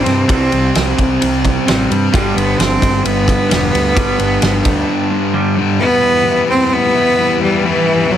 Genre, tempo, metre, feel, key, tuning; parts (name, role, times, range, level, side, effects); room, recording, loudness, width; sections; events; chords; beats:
quiet-loud alternative rock; 131 BPM; 4/4; straight; E minor; A4 = 440 Hz
bright cello; melody; 0.0-8.2 s; E3 to C4; -15 LUFS; right 1 dB
electric guitar through a small old amp; arpeggios; 0.0-5.8 s; G2 to G3; -24 LUFS; right 1 dB; analog delay
overdriven electric guitar; riff; 0.0-5.8 s; G2 to C4; -19 LUFS; right 8 dB
thick fuzz guitar; riff; 0.0-8.2 s; G2 to E4; -18 LUFS; left 7 dB; distortion
growling picked electric bass; bass; 0.1-4.8 s; E1 to G2; -20 LUFS; right 1 dB; overdrive
loose indie drum kit; drums; 0.1-4.8 s; kick drum, ride cymbal, snare drum; -18 LUFS; equal
string machine, full ensemble; sustained chords; 5.8-8.2 s; E4 to G5; -24 LUFS; equal; ensemble chorus
light reverb; heavily compressed radio sound, multiband compression; -11 LUFS; side -10 dB against mid
0.0-5.8 A section; 5.8-8.2 B section
0.0 C; 2.1 G; 5.8 Em
| 0.29 0.75 1.21 1.67 | 2.13 2.59 3.05 3.51 | 3.97 4.43 4.88 5.34 | 5.80 6.26 6.71 7.17 | 7.62 8.08